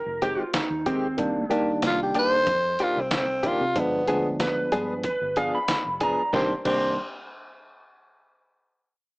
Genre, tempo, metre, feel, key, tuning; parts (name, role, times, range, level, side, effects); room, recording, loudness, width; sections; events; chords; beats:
straight-eighth soul blues; 93 BPM; 4/4; straight; C minor; A4 = 442 Hz
electric slide guitar; second line; 0.0-7.0 s; C4 to C6; -27 LUFS; right 1 dB
vintage muted fingered electric bass; bass; 0.1-7.0 s; F1 to C3; -38 LUFS; equal
direct-recorded clean electric guitar; stabs; 0.2-6.9 s; Eb3 to Ab4; -28 LUFS; left 1 dB; tremolo
trip hop sampler-style drum kit; drums; 0.2-6.8 s; crash cymbal, hi-hat, kick drum, snare drum, tambourine; -30 LUFS; equal; overdrive
bright tine electric piano; accompaniment; 1.2-7.0 s; Eb3 to D4; -28 LUFS; equal
growling tenor saxophone; melody; 1.9-7.0 s; B3 to C5; -23 LUFS; equal
moderate plate reverb, RT60 1.3 s; small speaker sound; -22 LUFS; side -26 dB against mid
0.0-6.3 A section; 6.3-8.9 B section
0.0 Fm9; 1.2 Cm9; 3.8 G7b9; 6.3 Cm9
0.54 | 1.19 1.83 2.48 3.12 | 3.77 4.41 5.05 5.70 | 6.34